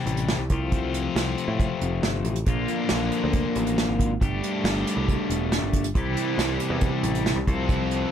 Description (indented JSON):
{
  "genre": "indie rock",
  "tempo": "138 BPM",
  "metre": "4/4",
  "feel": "straight",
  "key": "unclear",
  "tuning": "A4 = 440 Hz",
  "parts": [
    { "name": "cranked stack guitar", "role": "riff", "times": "0.0-8.1 s", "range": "Bb2 to A4", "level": "-27 LUFS", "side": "left 7 dB", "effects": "overdrive" },
    { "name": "picked electric bass", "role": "bass", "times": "0.1-8.0 s", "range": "E1 to A2", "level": "-28 LUFS", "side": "equal", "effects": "none" },
    { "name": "unplugged drum kit", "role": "drums", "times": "0.1-8.0 s", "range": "hi-hat, kick drum, snare drum", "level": "-26 LUFS", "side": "right 1 dB", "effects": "none" },
    { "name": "raw garage guitar", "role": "riff", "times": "2.5-8.1 s", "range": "Bb2 to A4", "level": "-29 LUFS", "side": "right 7 dB", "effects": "overdrive, wide subtle chorus" }
  ],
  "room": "little or no reverb",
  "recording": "dark, warm production",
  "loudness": "-22 LUFS",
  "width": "side -9 dB against mid",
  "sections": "0.0-8.1 A section",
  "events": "none",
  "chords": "0.5 F/C; 2.5 Bbmaj7; 4.2 Gsus2; 6.0 C; 7.5 F/C",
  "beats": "0.28 | 0.72 1.16 1.59 2.03 | 2.47 2.90 3.34 3.78 | 4.21 4.65 5.08 5.52 | 5.96 6.39 6.82 7.26 | 7.69"
}